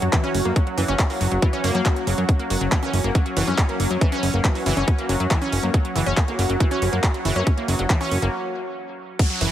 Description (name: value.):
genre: psychedelic trance.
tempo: 139 BPM.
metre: 4/4.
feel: straight.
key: unclear.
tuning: A4 = 439 Hz.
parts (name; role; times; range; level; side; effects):
formant-sweep wobble bass; second line; 0.0-8.0 s; E3 to A#3; -38 LUFS; right 3 dB; none.
evolving wavetable pad; sustained chords; 0.0-9.5 s; F#3 to F#4; -30 LUFS; left 1 dB; chorus, built-in reverb, sidechain pumping.
wide unison pluck; riff; 0.0-9.4 s; E3 to C#4; -26 LUFS; equal; auto-pan, sidechain pumping, dub echo.
fat analog bass; bass; 0.0-9.5 s; F#1 to F#2; -22 LUFS; equal; none.
drum and bass drum kit; drums; 0.0-9.5 s; crash cymbal, handclaps, hi-hat; -28 LUFS; right 1 dB; overdrive.
airy breathy pad; texture; 0.0-9.5 s; C#4 to F#5; -31 LUFS; equal; chorus, sidechain pumping.
electronic kick drum; drums; 0.1-9.3 s; none; -19 LUFS; equal; overdrive.
downlifter; sound effects; 9.2-9.5 s; none; -25 LUFS; equal; none.
room: light reverb, digital ambience.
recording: heavily compressed radio sound.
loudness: -19 LUFS.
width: side -11 dB against mid.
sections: 0.0-9.2 A section.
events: break 8.3-9.2.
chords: 0.0 F#5.